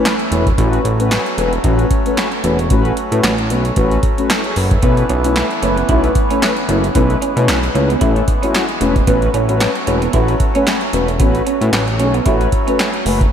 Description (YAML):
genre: early-eighties boogie funk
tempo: 113 BPM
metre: 4/4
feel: swing 56% on 16ths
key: unclear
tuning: A4 = 440 Hz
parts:
  - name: mellow synth brass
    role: accompaniment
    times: 0.0-13.2 s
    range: A3 to E5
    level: -18 LUFS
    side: left 2 dB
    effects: chorus, slapback echo
  - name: hand-pumped harmonium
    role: sustained chords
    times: 0.0-13.3 s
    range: E3 to C#4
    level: -24 LUFS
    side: right 1 dB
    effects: none
  - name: electro analog drum machine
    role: drums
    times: 0.1-13.3 s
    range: handclaps, hi-hat, kick drum, snare drum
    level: -18 LUFS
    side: equal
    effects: none
  - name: fat analog bass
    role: bass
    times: 0.3-13.3 s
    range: E1 to B2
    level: -18 LUFS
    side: equal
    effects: none
  - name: electric guitar through a small old amp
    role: riff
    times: 4.8-13.2 s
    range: A3 to E4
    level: -22 LUFS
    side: right 6 dB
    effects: lush chorus
room: moderate lush hall reverb, RT60 2.8 s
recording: big arena sound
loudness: -13 LUFS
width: side -8 dB against mid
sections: 0.0-13.3 A section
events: none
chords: 0.0 A69